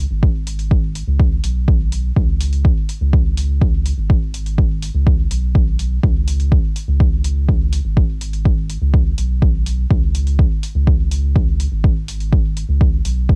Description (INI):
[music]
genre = dub techno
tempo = 124 BPM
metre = 4/4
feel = straight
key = unclear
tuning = A4 = 441 Hz
[part]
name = round analog bass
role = bass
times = 0.0-13.4 s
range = G#1 to C#2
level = -21 LUFS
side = equal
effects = transformer saturation, sidechain pumping
[part]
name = electronic kick drum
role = drums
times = 0.2-13.4 s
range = none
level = -18 LUFS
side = equal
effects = overdrive, cassette tape
[part]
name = electronic hi-hat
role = drums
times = 0.5-13.1 s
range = none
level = -34 LUFS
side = equal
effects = overdrive, cassette tape
[sound]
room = little or no reverb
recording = home recording on cassette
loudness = -17 LUFS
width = mono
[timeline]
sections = 0.0-13.4 A section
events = none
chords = none